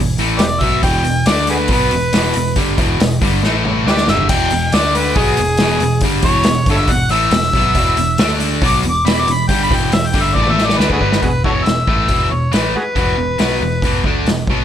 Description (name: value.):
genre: blues rock power trio and southern rock.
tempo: 139 BPM.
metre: 4/4.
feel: straight.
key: unclear.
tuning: A4 = 440 Hz.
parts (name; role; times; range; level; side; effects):
cranked stack guitar; riff; 0.0-14.6 s; E2 to D4; -18 LUFS; equal; overdrive.
vintage muted picked electric bass; bass; 0.0-14.6 s; E1 to D2; -21 LUFS; equal; none.
vintage drum kit; drums; 0.2-14.6 s; crash cymbal, hi-hat, kick drum, snare drum, toms; -18 LUFS; equal; none.
overdriven harmonica; melody; 0.4-14.0 s; F#4 to D6; -18 LUFS; left 1 dB; none.
room: small room ambience.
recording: none.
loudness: -12 LUFS.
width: side -10 dB against mid.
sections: 0.0-11.2 A section; 11.2-14.6 B section.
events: harmonica solo 0.0-11.2; drum fill 3.4-4.3, 10.4-11.2.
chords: 0.0 E5; 1.3 D5; 1.7 E5; 3.4 A5; 3.9 E5; 4.7 D5; 5.2 E; 8.2 D5; 8.6 E5; 10.4 A5; 10.8 Gadd9; 11.2 E5.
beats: 0.42 | 0.85 1.28 1.72 2.15 | 2.58 3.01 3.44 3.88 | 4.31 4.74 5.17 5.60 | 6.04 6.47 6.90 7.33 | 7.76 8.19 8.63 9.06 | 9.49 9.92 10.36 10.79 | 11.22 11.66 12.09 12.53 | 12.96 13.40 13.83 14.27.